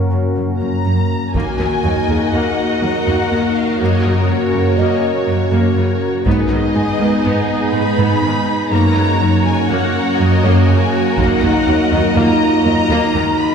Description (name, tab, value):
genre	cinematic, hybrid orchestral and electronic film score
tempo	122 BPM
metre	5/4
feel	straight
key	Eb minor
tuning	A4 = 440 Hz
part	dark analog pad	sustained chords	0.0-13.5 s	Gb3 to Cb5	-21 LUFS	left 1 dB	chorus
part	felt-muted upright piano	texture	0.0-13.5 s	F4 to Ab5	-29 LUFS	left 2 dB	none
part	clear symphonic cello section	bass	0.1-13.2 s	Eb2 to Ab2	-17 LUFS	right 1 dB	none
part	warm symphonic violin section	melody	0.6-13.5 s	Db5 to Cb6	-23 LUFS	left 2 dB	none
part	rich symphonic violin section	second line	1.3-13.5 s	Ab4 to Eb5	-24 LUFS	left 2 dB	none
part	clear symphonic viola section	accompaniment	1.3-13.5 s	Db3 to Gb4	-21 LUFS	right 3 dB	none
part	mellow French horn section	sustained chords	1.3-13.5 s	Bb3 to Gb4	-20 LUFS	equal	none
part	taiko ensemble	drums	1.3-2.3, 6.3-7.2, 11.2-12.1 s	none	-23 LUFS	equal	none
room	wet scoring stage reverb, RT60 2.1 s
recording	heard from further back in the room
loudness	-13 LUFS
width	side -6 dB against mid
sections	0.0-1.3 A section; 1.3-13.5 B section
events	build-up 0.0-1.3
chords	0.0 Gb; 1.3 Ebm; 3.8 Gb; 6.3 Abm; 8.7 Gb; 11.2 Ebm